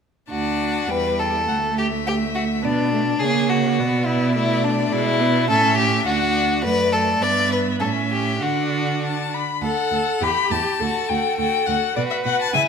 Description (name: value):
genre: quick classical-period movement for string quartet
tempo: 103 BPM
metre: 2/4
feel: straight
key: D major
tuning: A4 = 442 Hz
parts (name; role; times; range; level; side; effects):
- rich violin; melody; 0.3-12.6 s; C#5 to B5; -25 LUFS; left 8 dB; none
- clear violin; second line; 0.3-12.7 s; D4 to D5; -22 LUFS; left 3 dB; none
- bright viola; accompaniment; 0.3-12.7 s; G3 to E5; -25 LUFS; right 4 dB; none
- rich cello; bass; 0.3-12.6 s; D2 to D3; -25 LUFS; right 6 dB; none
room: moderate recital hall reverb, RT60 1.5 s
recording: none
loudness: -18 LUFS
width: side -6 dB against mid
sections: 0.3-9.6 A section; 9.6-12.7 A section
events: none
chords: 0.3 D; 0.9 Emadd11; 1.5 D5; 2.6 Bm; 3.2 F#add9/C#; 3.8 Bm; 4.9 E7/B; 5.5 A7; 6.1 D; 6.6 D/F#; 7.2 Em7/G; 7.8 A7; 8.4 D; 10.2 Emadd11; 10.8 D; 12.0 B5